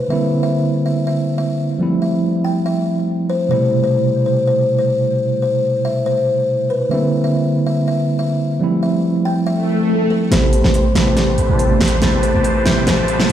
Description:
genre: future bass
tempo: 141 BPM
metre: 4/4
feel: swing 54% on 16ths, half-time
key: A minor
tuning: A4 = 440 Hz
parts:
  - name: buzzing kalimba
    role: melody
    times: 0.0-13.1 s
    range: A4 to G5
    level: -20 LUFS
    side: left 3 dB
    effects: low-pass filter, dub echo
  - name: tine electric piano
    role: accompaniment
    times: 0.0-13.3 s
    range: B2 to G4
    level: -18 LUFS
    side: right 2 dB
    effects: medium stereo tremolo
  - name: swell and riser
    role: sound effects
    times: 9.6-13.3 s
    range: none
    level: -23 LUFS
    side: left 2 dB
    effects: none
  - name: dense compressed supersaw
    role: riff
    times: 10.3-13.3 s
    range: A3 to C6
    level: -20 LUFS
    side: right 1 dB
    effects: low-pass filter
  - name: warm 808-style bass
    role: bass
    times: 10.3-13.3 s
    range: A1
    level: -18 LUFS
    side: equal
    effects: none
  - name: big-room dance drum kit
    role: drums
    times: 10.3-13.3 s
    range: hi-hat, snare drum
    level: -19 LUFS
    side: right 1 dB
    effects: none
room: moderate lush hall reverb, RT60 2.4 s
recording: played on a big sound system in a bare room, large studio reverb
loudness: -14 LUFS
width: side -10 dB against mid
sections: 0.0-10.3 A section; 10.3-13.3 B section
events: swell 9.6-10.3; build-up 10.3-13.3; drum fill 10.3-13.3; filter sweep on supersaw synth 10.3-13.3; filter sweep on kalimba 10.3-13.3; filter sweep 10.3-13.3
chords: 0.1 C7; 1.8 Fmaj9; 3.5 Am7; 6.9 C7; 8.6 Fmaj9; 10.3 Am7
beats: | 0.10 0.53 0.95 1.38 | 1.81 2.23 2.66 3.08 | 3.51 3.93 4.36 4.78 | 5.21 5.63 6.06 6.49 | 6.91 7.34 7.76 8.19 | 8.61 9.04 9.46 9.89 | 10.32 10.74 11.17 11.59 | 12.02 12.44 12.87 13.29

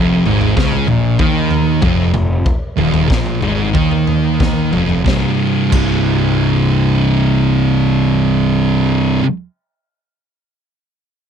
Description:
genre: stoner and doom metal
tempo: 92 BPM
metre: 4/4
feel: straight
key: C phrygian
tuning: A4 = 440 Hz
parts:
  - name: thick fuzz guitar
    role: riff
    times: 0.0-9.3 s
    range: C2 to Eb3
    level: -17 LUFS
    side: left 8 dB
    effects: distortion
  - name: thick fuzz guitar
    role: riff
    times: 0.0-9.2 s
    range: C2 to Eb3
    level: -16 LUFS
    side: right 10 dB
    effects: distortion
  - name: fuzz picked electric bass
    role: bass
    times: 0.0-9.2 s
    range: C1 to Eb2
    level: -19 LUFS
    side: equal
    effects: overdrive
  - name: raw garage drum kit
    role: drums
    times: 0.3-5.9 s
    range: crash cymbal, kick drum, snare drum, toms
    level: -19 LUFS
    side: left 1 dB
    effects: none
room: little or no reverb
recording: dry, close 1970s-style studio recording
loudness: -12 LUFS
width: side -8 dB against mid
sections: 0.0-5.1 A section; 5.1-7.7 B section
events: slowing down 0.0-5.1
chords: 0.0 Eb9sus4; 5.1 C5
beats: 0.56 1.19 1.82 | 2.45 3.09 3.74 4.39 | 5.05 5.72 6.38 7.05

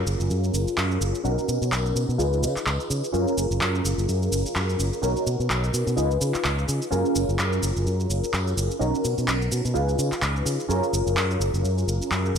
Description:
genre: filtered disco house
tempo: 127 BPM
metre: 4/4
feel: swing 57% on 16ths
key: F# major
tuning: A4 = 441 Hz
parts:
  - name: funky polysynth comp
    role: accompaniment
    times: 0.0-12.4 s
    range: C#4 to B4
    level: -26 LUFS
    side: equal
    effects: chorus, phaser, low-pass filter
  - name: modern bright fingered electric bass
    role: bass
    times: 0.0-12.4 s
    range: F#1 to C#3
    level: -25 LUFS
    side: equal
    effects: tube saturation, low-pass filter
  - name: electronic shaker and handclaps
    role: drums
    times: 0.1-12.4 s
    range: none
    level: -29 LUFS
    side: equal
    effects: studio reverb
room: moderate plate reverb, RT60 1.3 s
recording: dreamy mix soaked in reverb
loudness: -22 LUFS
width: side -7 dB against mid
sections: 0.0-12.4 A section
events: filter sweep 0.0-12.4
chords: 0.0 F#maj7; 1.2 Bmaj7; 2.2 C#7; 3.1 F#maj7; 5.0 Bmaj7; 6.0 C#7; 6.9 F#maj7; 8.8 Bmaj7; 9.8 C#7; 10.7 F#maj7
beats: 0.30 0.77 | 1.25 1.72 2.19 2.66 | 3.13 3.61 4.08 4.55 | 5.03 5.50 5.97 6.44 | 6.92 7.39 7.86 8.33 | 8.80 9.28 9.75 10.22 | 10.69 11.17 11.64 12.11

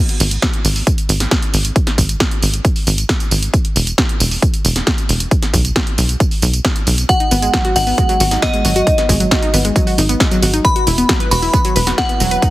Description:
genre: uplifting trance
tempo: 135 BPM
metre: 4/4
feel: straight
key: G# minor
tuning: A4 = 440 Hz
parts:
  - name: punchy analog drum machine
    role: drums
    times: 0.1-12.5 s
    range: hi-hat, snare drum, tambourine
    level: -18 LUFS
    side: right 1 dB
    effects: sidechain pumping on hats, sidechain pumping on perc, sidechain pumping on cymbals
  - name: tight sequencer bass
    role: bass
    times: 0.2-12.4 s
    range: E1 to B1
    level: -16 LUFS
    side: equal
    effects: sidechain pumping
  - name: electronic kick drum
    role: drums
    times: 0.4-12.5 s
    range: none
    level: -16 LUFS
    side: equal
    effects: none
  - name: glassy synth bell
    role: second line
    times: 7.1-12.5 s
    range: D#5 to B5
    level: -18 LUFS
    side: equal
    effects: chorus, tape echo
  - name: wide unison pluck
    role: arpeggios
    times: 7.1-12.5 s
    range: F#3 to B4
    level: -19 LUFS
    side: left 1 dB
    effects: sidechain pumping, dub echo
room: light reverb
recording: heavily compressed radio sound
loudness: -12 LUFS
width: side -17 dB against mid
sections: 0.0-12.5 A section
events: none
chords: 0.0 N.C.; 7.1 G#m7; 10.6 Esus2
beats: 0.42 0.87 1.31 | 1.76 2.20 2.65 3.09 | 3.54 3.98 4.42 4.87 | 5.31 5.76 6.20 6.65 | 7.09 7.54 7.98 8.42 | 8.87 9.31 9.76 10.20 | 10.65 11.09 11.54 11.98 | 12.42

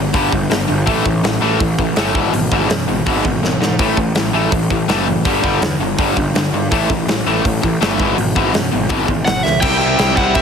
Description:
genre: punk rock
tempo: 164 BPM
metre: 4/4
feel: straight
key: unclear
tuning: A4 = 441 Hz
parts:
  - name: distorted electric guitar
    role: riff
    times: 0.0-10.4 s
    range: E2 to C4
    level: -18 LUFS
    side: left 11 dB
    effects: overdrive
  - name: overdriven semi-hollow guitar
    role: riff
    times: 0.0-10.4 s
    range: G2 to E4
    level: -21 LUFS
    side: right 12 dB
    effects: none
  - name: fuzz picked electric bass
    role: bass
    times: 0.0-10.4 s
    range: F#1 to G#2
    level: -21 LUFS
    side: right 1 dB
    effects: overdrive
  - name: big rock drum kit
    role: drums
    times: 0.1-10.4 s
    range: crash cymbal, hi-hat, kick drum, snare drum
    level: -19 LUFS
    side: equal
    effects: none
  - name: dark smooth lead guitar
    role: melody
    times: 9.2-10.4 s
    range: E5 to G5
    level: -16 LUFS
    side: right 2 dB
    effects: overdrive, tape echo
room: little or no reverb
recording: heavily compressed radio sound, multiband compression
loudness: -13 LUFS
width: side -7 dB against mid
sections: 0.0-9.6 A section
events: drum fill 3.4-3.8, 9.4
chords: 0.0 G5; 0.9 A5; 2.1 E/G#; 3.8 A5; 5.3 G5; 6.7 A5; 8.0 E/G#; 9.6 C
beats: 0.14 0.50 | 0.87 1.24 1.60 1.97 | 2.33 2.70 3.06 3.43 | 3.79 4.16 4.52 4.89 | 5.25 5.62 5.98 6.35 | 6.71 7.08 7.44 7.81 | 8.17 8.54 8.90 9.26 | 9.63 9.99 10.36

